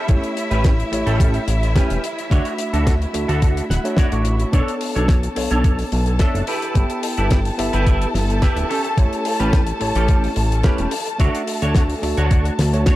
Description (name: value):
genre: nu-disco, nu disco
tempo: 108 BPM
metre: 4/4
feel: straight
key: unclear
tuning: A4 = 440 Hz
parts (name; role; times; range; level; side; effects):
- warm symphonic violin section; sustained chords; 0.0-13.0 s; E4 to A5; -27 LUFS; left 1 dB; sidechain pumping
- semi-hollow electric guitar; riff; 0.0-13.0 s; C#4 to F#5; -26 LUFS; right 2 dB; ensemble chorus, vintage 12-bit sampler grit, dub echo
- tine electric piano; accompaniment; 0.1-13.0 s; A3 to C#6; -25 LUFS; equal; low-pass filter, dub echo
- fat analog bass; bass; 0.1-12.9 s; D1 to D2; -20 LUFS; equal; none
- damped 70s drum kit; drums; 0.1-13.0 s; hi-hat, snare drum; -27 LUFS; left 2 dB; none
- electronic kick drum; drums; 0.1-13.0 s; none; -16 LUFS; equal; overdrive
room: light reverb, studio ambience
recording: echo-heavy mix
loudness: -16 LUFS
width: side -16 dB against mid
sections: 0.0-13.0 A section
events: clean electric guitar fill 3.4-4.5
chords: 0.0 A7; 2.3 Dmaj7; 4.5 Bm9; 6.5 G6; 8.7 A7; 11.2 Dmaj7